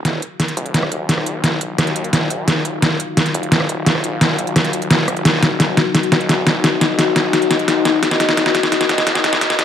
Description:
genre	dark technical drum and bass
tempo	173 BPM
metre	4/4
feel	straight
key	Eb minor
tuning	A4 = 440 Hz
part	dark analog pad	sustained chords	0.5-9.6 s	Eb4 to F5	-20 LUFS	left 4 dB	chorus
part	snarling distorted saw bass	bass	0.0-9.6 s	Eb1 to Eb2	-25 LUFS	equal	distortion, tube saturation, high-pass filter
part	dubstep drum kit	drums	0.1-9.6 s	hi-hat, rim click, snare drum	-15 LUFS	equal	none
room	moderate digital room reverb, RT60 1.2 s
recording	dark, warm production, high-pass filter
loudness	-14 LUFS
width	side -9 dB against mid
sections	0.0-9.6 A section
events	build-up 0.0-9.6; drum fill 0.0-9.6; filter sweep on analog synth pad 0.0-9.6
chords	0.0 Ebmadd9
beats	0.05 0.40 0.74 | 1.09 1.44 1.78 2.13 | 2.48 2.83 3.17 3.52 | 3.87 4.21 4.56 4.91 | 5.25 5.60 5.95 6.29 | 6.64 6.99 7.33 7.68 | 8.03 8.37 8.72 9.07 | 9.41

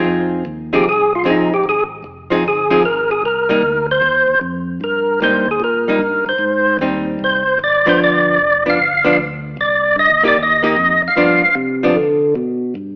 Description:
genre	jazz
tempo	151 BPM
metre	4/4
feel	swing 67% on 8ths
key	C minor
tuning	A4 = 442 Hz
part	archtop guitar, miked and amplified	accompaniment	0.0-12.0 s	F3 to Ab4	-20 LUFS	equal	none
part	tonewheel organ	bass	0.0-13.0 s	F1 to D3	-26 LUFS	equal	overdrive, stopped rotary speaker
part	percussive tonewheel organ	melody	0.7-11.5 s	Eb4 to F5	-16 LUFS	equal	slow rotary speaker
room	wet stone room reverb, RT60 1.4 s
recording	band playing live in one room, AM radio sound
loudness	-15 LUFS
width	mono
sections	0.0-12.8 A section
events	tonewheel organ solo 0.0-12.8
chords	0.1 Fm7; 3.2 Cm7; 6.4 Abmaj7; 8.0 G7; 9.6 Cm7; 11.2 G7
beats	| 0.06 0.46 0.85 1.25 | 1.65 2.04 2.44 2.84 | 3.23 3.63 4.03 4.42 | 4.82 5.21 5.61 6.01 | 6.40 6.80 7.20 7.59 | 7.99 8.39 8.79 9.18 | 9.58 9.97 10.37 10.77 | 11.17 11.56 11.96 12.36 | 12.76

